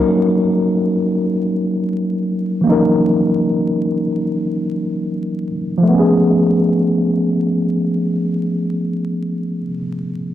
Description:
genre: hip hop.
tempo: free time.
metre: none.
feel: none.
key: unclear.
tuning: A4 = 440 Hz.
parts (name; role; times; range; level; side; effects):
tine electric piano; accompaniment; 0.0-10.3 s; E3 to A#4; -15 LUFS; equal; overdrive, fast stereo tremolo, low-pass filter.
room: light reverb.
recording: dry, gritty hardware recording, vinyl crackle.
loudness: -15 LUFS.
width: side -12 dB against mid.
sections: 0.0-5.9 A section; 5.9-8.7 B section.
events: filter sweep on tine electric piano 0.0-5.9.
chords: 0.0 D#m7; 5.9 C#7b13.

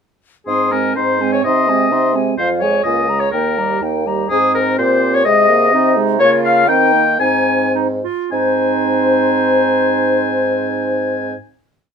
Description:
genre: quick classical-period movement for wind quintet.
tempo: 103-129 BPM.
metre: 2/4.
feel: rubato.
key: Ab major.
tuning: A4 = 440 Hz.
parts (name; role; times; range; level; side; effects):
concert flute; melody; 0.5-11.3 s; Ab4 to C6; -19 LUFS; left 7 dB; none.
clear oboe; second line; 0.5-11.3 s; Ab4 to Ab5+21c; -17 LUFS; left 2 dB; none.
mellow French horn; accompaniment; 0.5-11.3 s; F3 to C4; -22 LUFS; left 1 dB; none.
warm clarinet; accompaniment; 0.5-11.3 s; C4 to Ab4; -21 LUFS; right 11 dB; none.
warm bassoon; bass; 0.5-11.3 s; Db2 to Eb3; -19 LUFS; right 2 dB; none.
room: moderate studio reverb, RT60 0.5 s.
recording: minimal, uncompressed stereo recording.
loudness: -13 LUFS.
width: side -6 dB against mid.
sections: 0.5-4.3 A section; 4.3-8.3 A section; 8.3-10.6 final chord.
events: slowing down 5.7-8.3.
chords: 0.5 Ab; 1.4 Ab/C; 2.4 Fm; 2.9 Bbm7/Db; 3.3 Eb; 4.3 Ab; 5.3 Ab/C; 6.2 Bbm/Db; 6.7 Eb; 7.2 Ab.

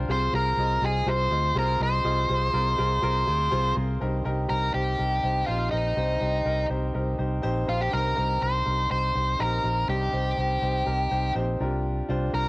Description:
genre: piano-driven pop.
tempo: 122 BPM.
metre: 4/4.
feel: straight.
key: unclear.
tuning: A4 = 437 Hz.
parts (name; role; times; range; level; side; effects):
clear concert grand piano; accompaniment; 0.0-12.5 s; G2 to Eb5; -30 LUFS; left 1 dB; cassette tape.
fingered electric bass; bass; 0.0-12.5 s; Bb1 to D2; -27 LUFS; equal; tube saturation.
octave-fuzz lead guitar; melody; 0.1-12.5 s; Eb4 to C5; -26 LUFS; equal; distortion, cassette tape.
room: small room reverb.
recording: home recording on cassette.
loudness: -23 LUFS.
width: side -24 dB against mid.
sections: 0.0-4.0 A section; 4.0-12.5 B section.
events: none.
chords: 0.1 Fm/C; 4.0 Cm7; 11.6 Gm7.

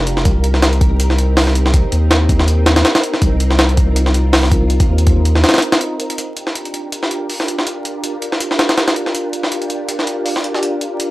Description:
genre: drum and bass, jungle.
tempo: 162 BPM.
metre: 4/4.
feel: swing 55% on 16ths.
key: G minor.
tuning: A4 = 441 Hz.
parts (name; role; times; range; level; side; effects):
soft string machine; sustained chords; 0.0-11.1 s; C4 to Bb4; -21 LUFS; equal; ensemble chorus.
saturated sub bass; bass; 0.0-5.4 s; F1 to Eb2; -14 LUFS; equal; tube saturation.
jungle sampler-style drum kit; drums; 0.1-11.1 s; hi-hat, kick drum, snare drum; -15 LUFS; equal; overdrive, high-pass filter on hats, high-pass filter on kick, high-pass filter on snare.
room: little or no reverb.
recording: dry, gritty hardware recording, transformer saturation, vinyl crackle.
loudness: -13 LUFS.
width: side -18 dB against mid.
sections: 0.0-6.2 A section; 6.2-11.1 B section.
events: none.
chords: 0.3 Cm7; 6.2 Gm7.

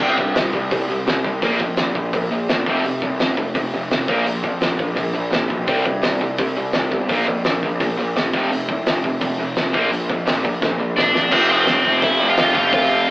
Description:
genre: punk rock.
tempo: 170 BPM.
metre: 4/4.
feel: straight.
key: unclear.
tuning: A4 = 439 Hz.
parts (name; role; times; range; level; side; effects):
distorted electric guitar; riff; 0.0-13.1 s; F2 to C4; -24 LUFS; right 1 dB; overdrive.
sludgy distorted guitar; riff; 0.0-13.1 s; F2 to C4; -24 LUFS; left 1 dB; overdrive.
fuzz picked electric bass; bass; 0.0-13.1 s; E1 to G2; -26 LUFS; equal; overdrive.
loose indie drum kit; drums; 0.0-12.8 s; crash cymbal, hi-hat, kick drum, snare drum; -21 LUFS; equal; none.
biting overdriven guitar; melody; 11.0-13.1 s; C4 to F5; -16 LUFS; equal; none.
heavy high-gain guitar; riff; 11.3-13.1 s; F3 to F4; -27 LUFS; equal; none.
room: light reverb.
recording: rough rehearsal-room recording, warm saturation, AM radio sound.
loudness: -16 LUFS.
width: side -21 dB against mid.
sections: 0.0-11.3 A section; 11.3-13.1 B section.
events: drum fill 10.6-11.3.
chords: 0.0 C5; 1.4 Bb5; 2.7 F5; 4.1 Bb5; 5.7 C5; 7.1 Bb5; 8.3 F5; 9.7 Bb; 11.3 F.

